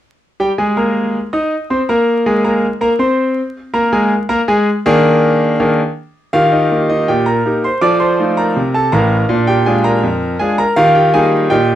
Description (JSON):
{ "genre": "ragtime piano", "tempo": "81 BPM", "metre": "2/4", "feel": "straight", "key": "Eb major", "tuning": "A4 = 439 Hz", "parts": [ { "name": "bright concert grand piano", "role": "solo", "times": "0.4-11.8 s", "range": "A1 to Eb6", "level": "-12 LUFS", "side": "equal", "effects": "slapback echo" } ], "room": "light reverb", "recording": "dry, close 1970s-style studio recording, vinyl crackle", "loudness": "-12 LUFS", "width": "side -12 dB against mid", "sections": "0.4-6.3 A section; 6.3-11.8 B section", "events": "none", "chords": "0.4 Eb5; 3.4 Bb7; 6.3 Eb; 7.8 F7; 9.3 Bb7; 10.8 Eb", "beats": "| 0.41 1.15 | 1.89 2.63 | 3.37 4.11 | 4.85 5.59 | 6.34 7.08 | 7.82 8.56 | 9.30 10.04 | 10.78 11.52" }